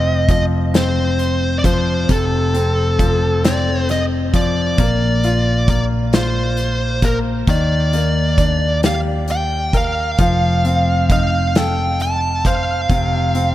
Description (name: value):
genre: six-eight pop ballad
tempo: 44 BPM (dotted quarters)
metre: 6/8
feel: straight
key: unclear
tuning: A4 = 437 Hz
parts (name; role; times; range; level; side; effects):
- fuzz lead guitar; melody; 0.0-13.5 s; A4 to A5; -20 LUFS; right 1 dB; distortion, tape echo
- bright concert grand piano; accompaniment; 0.0-13.5 s; C3 to C5; -22 LUFS; left 4 dB; none
- fingered electric bass; bass; 0.0-13.5 s; F1 to Eb2; -19 LUFS; equal; none
- loose indie drum kit; drums; 0.3-13.5 s; hi-hat, kick drum, snare drum; -19 LUFS; equal; none
room: moderate plate reverb, RT60 3.6 s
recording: dreamy mix soaked in reverb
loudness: -14 LUFS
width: side -14 dB against mid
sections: 0.0-13.5 A section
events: none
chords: 0.0 F; 4.8 Bbadd9; 7.5 Ebmaj7; 10.2 F7